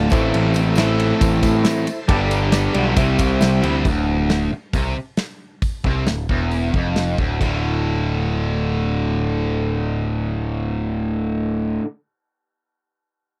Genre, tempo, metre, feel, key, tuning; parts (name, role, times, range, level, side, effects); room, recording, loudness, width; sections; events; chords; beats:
classic rock; 135 BPM; 4/4; straight; A4 = 440 Hz
barky reed electric piano; accompaniment; 0.0-3.8 s; E4 to B5; -28 LUFS; equal; overdrive, fast tremolo
bright tonewheel organ; sustained chords; 0.0-3.8 s; D4 to A5; -37 LUFS; equal
crunchy overdriven guitar; riff; 0.0-3.8 s; G2 to C5; -24 LUFS; equal
distorted electric guitar; riff; 0.0-11.9 s; D2 to C4; -24 LUFS; equal; overdrive
growling picked electric bass; bass; 0.0-11.8 s; D1 to A2; -24 LUFS; equal; overdrive
big rock drum kit; drums; 0.1-7.5 s; crash cymbal, hi-hat, kick drum, ride cymbal, snare drum; -24 LUFS; equal
tambourine; percussion; 0.1-3.5 s; -42 LUFS; equal
little or no reverb; dry, close 1970s-style studio recording; -20 LUFS; mono
0.0-3.8 A section; 3.8-7.4 B section; 7.4-11.0 C section
reed electric piano fill 2.5-3.8
0.1 Am; 2.1 Gadd9; 3.0 C; 3.8 Dm; 7.4 D5
| 0.33 0.77 1.21 1.65 | 2.08 2.52 2.96 3.40 | 3.85 4.29 4.73 5.17 | 5.62 6.06 6.51 6.95 | 7.40 7.85 8.29 8.74 | 9.19 9.63 10.08 10.53